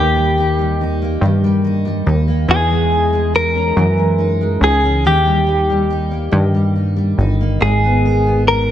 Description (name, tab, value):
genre	pop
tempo	47 BPM (dotted quarters)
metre	6/8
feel	straight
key	unclear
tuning	A4 = 440 Hz
part	direct-recorded clean electric guitar	melody	0.0-8.7 s	G4 to A#4	-16 LUFS	equal	analog chorus
part	picked steel-string acoustic guitar	accompaniment	0.0-8.7 s	G#2 to A#4	-20 LUFS	equal	double-tracked left and right
part	plucky analog bass	bass	0.0-8.7 s	G1 to G2	-16 LUFS	equal	none
room	studio ambience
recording	none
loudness	-13 LUFS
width	side -11 dB against mid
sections	0.0-8.7 A section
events	none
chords	0.0 D#; 2.5 C#madd9/E; 5.0 D#; 7.6 G#madd9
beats	1.21 | 2.49 3.76 | 5.04 6.33 | 7.61